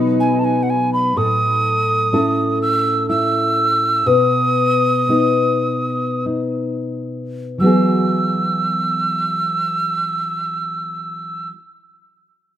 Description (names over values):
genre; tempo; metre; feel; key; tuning
celtic folk, Celtic slow air; 41-62 BPM; 3/4; rubato; E major; A4 = 444 Hz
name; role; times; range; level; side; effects
nylon-string guitar; accompaniment; 0.0-11.6 s; A2 to B4; -18 LUFS; left 1 dB; none
evolving wavetable pad; sustained chords; 0.0-1.1 s; F#3 to B4; -27 LUFS; right 3 dB; chorus, built-in reverb
breathy mellow mid whistle; melody; 0.2-11.5 s; F#5 to E6; -18 LUFS; right 2 dB; none
room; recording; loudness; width
light reverb, small room ambience; rough home demo mix; -15 LUFS; side -11 dB against mid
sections
0.0-1.2 A section; 1.2-7.6 B section; 7.6-11.8 C section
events
slowing down 1.2-7.6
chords
0.0 B; 1.2 A; 4.1 B; 7.6 Eadd9